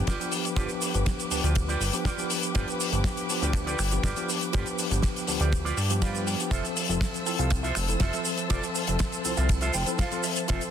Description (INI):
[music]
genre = nu-disco, nu disco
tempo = 121 BPM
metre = 4/4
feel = straight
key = G mixolydian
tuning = A4 = 440 Hz
[part]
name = bright tine electric piano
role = accompaniment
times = 0.0-10.7 s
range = F3 to E5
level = -32 LUFS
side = equal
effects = medium stereo tremolo, tape echo
[part]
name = muted studio string section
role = sustained chords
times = 0.0-10.7 s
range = B4 to E6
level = -35 LUFS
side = left 4 dB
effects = sidechain pumping
[part]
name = fat analog bass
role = bass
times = 0.0-10.6 s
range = F1 to G2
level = -28 LUFS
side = equal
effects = sidechain pumping
[part]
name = electric guitar with an envelope filter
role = riff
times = 0.1-10.6 s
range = F4 to G5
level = -35 LUFS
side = right 5 dB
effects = lush chorus, tape echo
[part]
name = damped 70s drum kit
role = drums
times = 0.1-10.7 s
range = finger snaps, hi-hat, ride cymbal, shaker, snare drum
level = -30 LUFS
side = equal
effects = none
[part]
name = kick drum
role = drums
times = 0.1-10.6 s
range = none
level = -28 LUFS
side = equal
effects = none
[sound]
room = light reverb, small room ambience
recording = dense, heavily limited modern master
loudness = -24 LUFS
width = side -9 dB against mid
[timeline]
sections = 0.0-10.7 A section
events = clean electric guitar fill 5.5-6.5, 9.5-10.5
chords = 0.0 G7; 6.5 Fmaj7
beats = 0.07 | 0.57 1.06 1.56 2.06 | 2.55 3.05 3.54 4.04 | 4.54 5.03 5.53 6.02 | 6.52 7.02 7.51 8.01 | 8.50 9.00 9.49 9.99 | 10.49